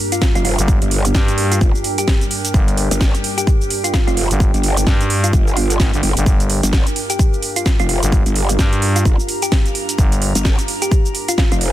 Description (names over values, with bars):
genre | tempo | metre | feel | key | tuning
bass house | 129 BPM | 4/4 | swing 59% on 16ths | G minor | A4 = 440 Hz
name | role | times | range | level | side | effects
dark analog pad | sustained chords | 0.0-11.7 s | G3 to F5 | -30 LUFS | equal | none
warbly tape-like pad | texture | 0.0-11.7 s | D4 to Bb5 | -26 LUFS | right 2 dB | chorus, built-in reverb, phaser, sidechain pumping
thumb-piano-like synth pluck | melody | 0.1-11.7 s | F4 to G4 | -24 LUFS | equal | chorus, phaser, cassette tape, ping-pong delay
house drum kit | drums | 0.1-11.7 s | cabasa, hi-hat, snare drum | -22 LUFS | right 2 dB | none
electronic kick drum | drums | 0.2-11.5 s | none | -15 LUFS | equal | none
growl bass | bass | 0.4-11.7 s | F1 to G1 | -18 LUFS | equal | chorus, overdrive, sidechain pumping
growling FM bass | bass | 0.6-10.3 s | G1 to G2 | -17 LUFS | equal | overdrive, sidechain pumping
room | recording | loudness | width
little or no reverb | dense, heavily limited modern master | -14 LUFS | side -13 dB against mid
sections
0.0-11.7 A section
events
none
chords
0.0 Gm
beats
0.22 | 0.68 1.15 1.61 2.08 | 2.54 3.01 3.47 3.94 | 4.40 4.87 5.33 5.80 | 6.26 6.73 7.19 7.66 | 8.12 8.59 9.05 9.52 | 9.98 10.45 10.91 11.38